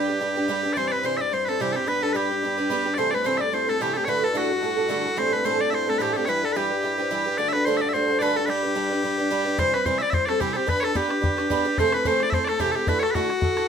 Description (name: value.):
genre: celtic folk, Celtic reel.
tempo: 218 BPM.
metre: 4/4.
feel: swing 55% on 8ths.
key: G major.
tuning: A4 = 441 Hz.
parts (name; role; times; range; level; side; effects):
loud bright bagpipes; melody; 0.0-13.7 s; F#4 to E5; -25 LUFS; equal; none.
mellow wooden flute; second line; 0.0-13.7 s; F#4 to D5; -29 LUFS; left 6 dB; none.
picked twelve-string acoustic guitar; accompaniment; 0.0-13.7 s; A2 to C5; -25 LUFS; right 4 dB; none.
mellow accordion; drone; 0.0-9.6 s; G2 to G3; -33 LUFS; left 4 dB; none.
bodhran; percussion; 9.6-13.6 s; none; -28 LUFS; left 2 dB; none.
room: wet studio reverb, RT60 0.6 s.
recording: minimal, uncompressed stereo recording.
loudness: -21 LUFS.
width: side -7 dB against mid.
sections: 0.8-9.6 A section; 9.6-13.7 A section.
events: none.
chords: 0.0 G; 0.8 C; 1.9 G; 3.0 Am; 4.1 Dadd9; 5.2 Am; 6.3 Em; 7.4 D; 8.5 G; 9.6 C; 10.7 G/B; 11.8 Am/C; 12.9 Dadd9.